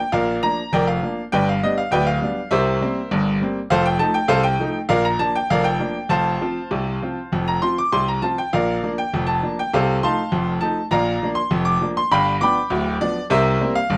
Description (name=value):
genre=ragtime piano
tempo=100 BPM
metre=2/4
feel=straight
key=Bb major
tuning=A4 = 441 Hz
part: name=bright grand piano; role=solo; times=0.0-14.0 s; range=D1 to D6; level=-20 LUFS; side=equal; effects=none
room=light reverb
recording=dark, warm production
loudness=-20 LUFS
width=mono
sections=0.0-14.0 A section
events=none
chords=0.0 Bb; 1.3 G; 2.5 C7; 3.7 F7; 4.9 Bb; 6.1 F; 8.5 Bb; 9.7 F7/C; 10.9 Bb; 12.1 G7; 13.3 C7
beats=| 0.12 0.71 | 1.31 1.91 | 2.51 3.11 | 3.70 4.30 | 4.90 5.50 | 6.10 6.70 | 7.31 7.91 | 8.52 9.12 | 9.71 10.31 | 10.91 11.51 | 12.10 12.70 | 13.29 13.89